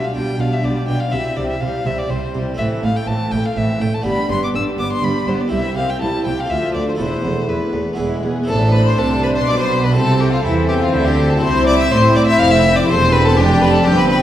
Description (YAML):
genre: classical, baroque-style concerto movement with solo episodes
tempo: 123 BPM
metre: 3/4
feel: straight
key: A minor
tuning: A4 = 440 Hz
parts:
  - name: rich chamber violin section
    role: melody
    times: 0.0-14.2 s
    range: D4 to F6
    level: -27 LUFS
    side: left 4 dB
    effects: none
  - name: rich violin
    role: melody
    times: 0.0-14.2 s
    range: E4 to E6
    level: -20 LUFS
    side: left 1 dB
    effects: none
  - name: warm chamber violin section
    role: second line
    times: 0.0-14.2 s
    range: A3 to C5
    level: -24 LUFS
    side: equal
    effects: none
  - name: harpsichord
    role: accompaniment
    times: 0.0-14.2 s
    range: C2 to A4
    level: -25 LUFS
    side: right 1 dB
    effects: none
  - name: rich chamber viola section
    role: accompaniment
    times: 0.0-14.2 s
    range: E3 to D4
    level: -23 LUFS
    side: left 1 dB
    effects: none
  - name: rich chamber cello section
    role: bass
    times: 0.1-14.2 s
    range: C2 to E3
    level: -21 LUFS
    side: right 1 dB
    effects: none
  - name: warm chamber double bass section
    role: bass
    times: 0.2-14.2 s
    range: E1 to E2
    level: -21 LUFS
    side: right 2 dB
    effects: none
room: wet recital hall reverb, RT60 1.6 s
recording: heard from further back in the room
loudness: -14 LUFS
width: side -12 dB against mid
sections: 0.0-8.5 A section; 8.5-14.2 B section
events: none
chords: 0.0 G7/B; 1.1 C; 2.6 Am; 4.1 G; 5.5 C; 6.5 Dm; 7.0 Esus4; 8.0 E; 8.5 Am; 10.0 Am/C; 11.4 C; 12.9 C/E